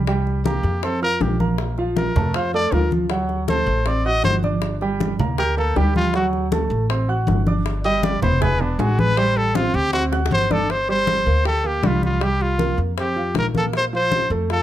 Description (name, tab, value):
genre	Afro-Cuban jazz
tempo	158 BPM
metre	4/4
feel	straight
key	G minor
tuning	A4 = 445 Hz
part	upright bass	bass	0.0-14.6 s	E1 to F2	-23 LUFS	equal	none
part	warm grand piano	accompaniment	0.1-14.6 s	F3 to G#6	-24 LUFS	right 3 dB	none
part	bongos	percussion	0.1-14.6 s	none	-29 LUFS	left 8 dB	none
part	congas	percussion	0.1-14.6 s	none	-26 LUFS	equal	none
part	warm trumpet	melody	0.5-14.6 s	D4 to Eb5	-22 LUFS	left 1 dB	none
room	light reverb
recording	close, detailed microphones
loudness	-18 LUFS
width	side -12 dB against mid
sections	0.0-10.7 A section; 10.7-14.6 B section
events	trumpet solo 0.0-10.7; drum fill 10.1-10.7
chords	0.1 C5; 0.8 F5; 1.6 Bbmaj7; 3.1 D7; 4.6 Gm; 6.1 D7; 7.7 G5; 8.4 E; 9.2 Am7; 9.9 D7; 10.7 Gmadd11; 12.2 C5; 13.0 Fsus2; 13.7 Bbmaj7sus2